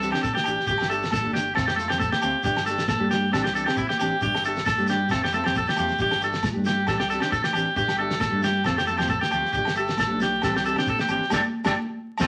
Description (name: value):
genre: highlife guitar band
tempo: 135 BPM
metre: 4/4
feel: straight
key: unclear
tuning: A4 = 443 Hz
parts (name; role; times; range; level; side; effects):
- nylon-string guitar; accompaniment; 0.0-12.3 s; E3 to G4; -33 LUFS; equal; none
- electric guitar at the edge of break-up; arpeggios; 0.0-12.3 s; C4 to A4; -26 LUFS; equal; none
- fingered electric bass; bass; 0.0-12.3 s; F1 to C3; -34 LUFS; equal; none
- shekere; percussion; 0.0-12.3 s; none; -38 LUFS; equal; none
- damped 70s drum kit; drums; 0.1-12.3 s; kick drum, snare drum; -34 LUFS; equal; none
- agogo bells; percussion; 0.1-12.3 s; none; -38 LUFS; equal; none
- congas; percussion; 0.2-12.3 s; none; -36 LUFS; equal; none
room: wet studio reverb, RT60 0.7 s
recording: vinyl crackle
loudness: -24 LUFS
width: mono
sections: 0.0-12.3 A section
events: drum fill 5.5-6.0; band accent 11.3-12.3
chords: 0.0 Cadd9; 0.7 Gsus2; 1.6 F; 2.4 Gsus2; 3.3 Cadd9; 4.2 Gsus2; 5.1 F; 6.0 Gsus2; 6.9 Cadd9; 7.8 Gsus2; 8.6 F; 9.5 Gsus2; 10.4 Cadd9; 11.3 Gsus2